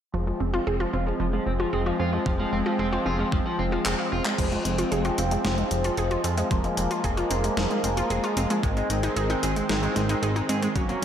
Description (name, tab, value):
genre	synthwave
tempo	113 BPM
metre	4/4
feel	straight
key	F minor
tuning	A4 = 440 Hz
part	soft supersaw	sustained chords	0.1-11.0 s	Eb3 to Db4	-28 LUFS	equal	phaser, sidechain pumping
part	analog pluck	arpeggios	0.1-11.0 s	Eb3 to Ab4	-30 LUFS	right 2 dB	chorus, vintage 12-bit sampler grit, digital delay
part	electric guitar at the edge of break-up	riff	0.1-11.0 s	F3 to Ab4	-33 LUFS	equal	lush chorus, low-pass filter, digital delay, slapback echo
part	fat analog bass	bass	0.1-11.0 s	F1 to Ab2	-28 LUFS	equal	sidechain pumping
part	electronic kick drum	drums	2.3-10.9 s	none	-28 LUFS	equal	overdrive
part	clean 12-bit digital drum machine	drums	3.9-11.0 s	crash cymbal, handclaps, hi-hat, snare drum	-31 LUFS	left 1 dB	overdrive
room	wet scoring stage reverb, RT60 1.7 s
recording	big arena sound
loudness	-23 LUFS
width	side -9 dB against mid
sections	0.1-4.4 A section; 4.4-11.0 B section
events	filter sweep on clean electric guitar 0.1-4.4, 4.4-11.0; drum fill 3.9-4.4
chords	0.1 Fm; 8.6 Ab